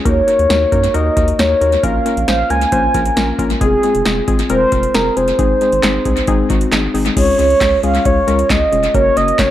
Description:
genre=synth-pop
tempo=135 BPM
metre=4/4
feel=straight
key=Db major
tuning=A4 = 438 Hz
part: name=warbly dusty pluck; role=accompaniment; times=0.0-9.5 s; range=Ab3 to C5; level=-18 LUFS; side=left 4 dB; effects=chorus
part: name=mellow horn-like synth lead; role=melody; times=0.1-9.5 s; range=Ab4 to Ab5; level=-15 LUFS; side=right 1 dB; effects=chorus, tape echo
part: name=round analog bass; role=bass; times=0.1-9.5 s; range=F1 to Gb2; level=-20 LUFS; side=equal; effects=none
part: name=electro analog drum machine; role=drums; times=0.1-9.5 s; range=crash cymbal, handclaps, hi-hat, kick drum, snare drum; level=-18 LUFS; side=equal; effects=overdrive, tape echo
room=moderate spring reverb, RT60 1.2 s, digital ambience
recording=echo-heavy mix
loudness=-12 LUFS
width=side -12 dB against mid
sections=0.0-7.2 A section; 7.2-9.5 B section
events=none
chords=0.1 Ebm; 1.8 Bbm; 3.6 Fm; 5.4 Ab; 7.2 Db; 8.9 Gb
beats=| 0.06 0.50 0.94 1.39 | 1.83 2.28 2.72 3.17 | 3.61 4.06 4.50 4.95 | 5.39 5.83 6.28 6.72 | 7.17 7.61 8.06 8.50 | 8.95 9.39

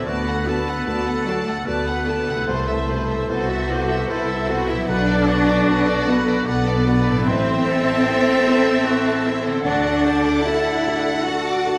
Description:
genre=cinematic, emotional film score for orchestra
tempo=75 BPM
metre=3/4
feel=rubato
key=A dorian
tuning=A4 = 440 Hz
part: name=warm symphonic violin section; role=melody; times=0.0-11.8 s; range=C5 to A5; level=-31 LUFS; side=equal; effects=none
part: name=rich symphonic violin section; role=second line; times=0.0-11.8 s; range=A4 to D6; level=-35 LUFS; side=equal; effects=none
part: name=small flute group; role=second line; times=0.0-11.8 s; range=F#4 to F#5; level=-32 LUFS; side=equal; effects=none
part: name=warm oboe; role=second line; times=0.0-11.8 s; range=E4 to D5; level=-30 LUFS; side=equal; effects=none
part: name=warm concert grand piano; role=accompaniment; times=0.0-11.8 s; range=A1 to F#5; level=-28 LUFS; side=equal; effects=none
part: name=warm symphonic viola section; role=accompaniment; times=0.0-11.8 s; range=F#4 to C5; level=-34 LUFS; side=equal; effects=none
part: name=dark French horn section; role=sustained chords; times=0.0-11.8 s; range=D4 to C5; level=-32 LUFS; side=equal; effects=none
part: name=concert harp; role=arpeggios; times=0.0-11.8 s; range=A2 to F#5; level=-34 LUFS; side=equal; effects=none
part: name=warm symphonic cello section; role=bass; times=0.0-11.8 s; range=F#3 to F#4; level=-24 LUFS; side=equal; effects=none
part: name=warm studio double bass section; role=bass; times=0.1-10.3 s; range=A1 to D2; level=-29 LUFS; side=equal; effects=none
room=wet scoring stage reverb, RT60 1.7 s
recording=none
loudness=-20 LUFS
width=mono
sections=0.0-11.8 A section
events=none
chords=0.1 D; 2.5 Amadd9/C; 4.9 Bm7; 7.3 Am; 9.7 D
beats=| 0.07 0.87 1.67 | 2.47 3.29 4.09 | 4.89 5.68 6.47 | 7.27 8.06 8.85 | 9.65 10.46 11.27

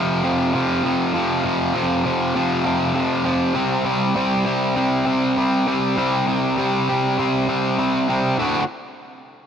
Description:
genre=rock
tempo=100 BPM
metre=4/4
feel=straight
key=unclear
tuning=A4 = 440 Hz
part: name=distorted electric guitar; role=solo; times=0.0-8.6 s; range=D2 to F#4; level=-18 LUFS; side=equal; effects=distortion
room=moderate plate reverb, RT60 3.2 s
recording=none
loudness=-18 LUFS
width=side -8 dB against mid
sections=0.0-8.4 A section; 8.4-9.5 B section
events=none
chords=0.0 F5; 3.6 C5; 8.4 D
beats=0.54 | 1.14 1.75 2.35 2.95 | 3.56 4.16 4.76 5.36 | 5.97 6.57 7.17 7.78 | 8.38

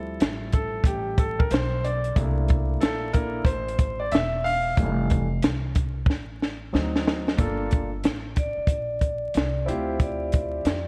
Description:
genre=hip hop, jazz-hop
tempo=92 BPM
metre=4/4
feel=swing 63% on 16ths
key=G dorian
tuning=A4 = 440 Hz
part: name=dark baby grand piano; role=accompaniment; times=0.0-10.7 s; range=E3 to F5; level=-31 LUFS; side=equal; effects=none
part: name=upright bass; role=bass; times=0.0-10.9 s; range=E1 to F2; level=-32 LUFS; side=equal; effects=none
part: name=compact cocktail drum kit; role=drums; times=0.2-10.8 s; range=hi-hat, kick drum, snare drum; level=-26 LUFS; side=equal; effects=none
part: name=vibraphone with medium hard mallets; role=melody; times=8.4-10.9 s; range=C5 to D5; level=-32 LUFS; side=equal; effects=none
room=light reverb, small room ambience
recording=dark, warm production, vinyl crackle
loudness=-25 LUFS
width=mono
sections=0.0-7.4 A section; 7.4-10.9 B section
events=grand piano solo 0.0-7.4; drum fill 6.1-7.4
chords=0.0 Dm11; 2.2 C13; 4.8 Fmaj9; 6.7 D7b9; 7.4 Gm9; 9.7 Dm11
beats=0.21 0.86 1.51 | 2.17 2.82 3.47 4.12 | 4.77 5.43 6.08 6.73 | 7.38 8.04 8.69 9.34 | 9.99 10.64

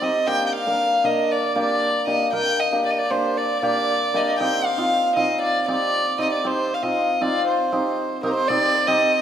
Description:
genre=klezmer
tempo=117 BPM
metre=4/4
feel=straight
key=C minor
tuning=A4 = 441 Hz
part: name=warm violin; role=melody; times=0.0-9.2 s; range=Bb4 to G5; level=-21 LUFS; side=right 1 dB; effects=none
part: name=hammered dulcimer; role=accompaniment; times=0.0-9.1 s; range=Bb3 to Bb4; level=-22 LUFS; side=equal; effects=none
room=wet recital hall reverb, RT60 1.9 s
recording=minimal, uncompressed stereo recording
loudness=-19 LUFS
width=side -9 dB against mid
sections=0.0-8.5 A section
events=none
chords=0.3 Gm; 4.4 Cm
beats=| 0.27 0.79 1.30 1.81 | 2.32 2.84 3.35 3.87 | 4.38 4.89 5.41 5.92 | 6.44 6.95 7.46 7.98 | 8.49 9.00

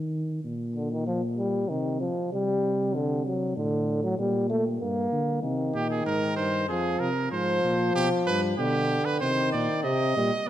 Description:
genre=classical, imitative canzona for brass ensemble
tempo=96 BPM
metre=4/4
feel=straight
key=C minor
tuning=A4 = 444 Hz
part: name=warm tuba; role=bass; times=0.0-10.3 s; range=F2 to Eb3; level=-30 LUFS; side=equal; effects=none
part: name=warm euphonium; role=accompaniment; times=0.8-10.3 s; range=C3 to Bb3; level=-27 LUFS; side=left 1 dB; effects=none
part: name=brilliant trumpet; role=second line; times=5.8-10.5 s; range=G4 to Eb5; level=-28 LUFS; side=right 3 dB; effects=none
room=moderate concert hall reverb, RT60 2.3 s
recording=none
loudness=-24 LUFS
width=side -12 dB against mid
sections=0.0-10.5 A section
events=none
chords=0.4 Gm/Bb; 1.7 Cm; 2.9 D; 4.2 Gm/Bb; 5.4 Cm; 6.7 Fm; 8.0 G; 9.2 Cm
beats=| 0.45 1.07 1.70 2.32 | 2.95 3.57 4.19 4.82 | 5.44 6.06 6.69 7.32 | 7.95 8.58 9.21 9.84 | 10.48

